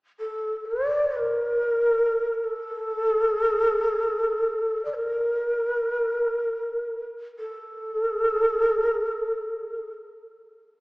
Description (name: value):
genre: japanese traditional, Japanese chamber music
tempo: free time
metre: none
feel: none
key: unclear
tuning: A4 = 439 Hz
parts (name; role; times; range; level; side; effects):
- breathy mellow shakuhachi; solo; 0.2-9.9 s; A4 to D5; -23 LUFS; equal; none
room: wet concert hall reverb, RT60 2.4 s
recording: heard from further back in the room, small speaker sound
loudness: -22 LUFS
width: side -26 dB against mid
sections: 0.0-10.8 A section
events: none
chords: none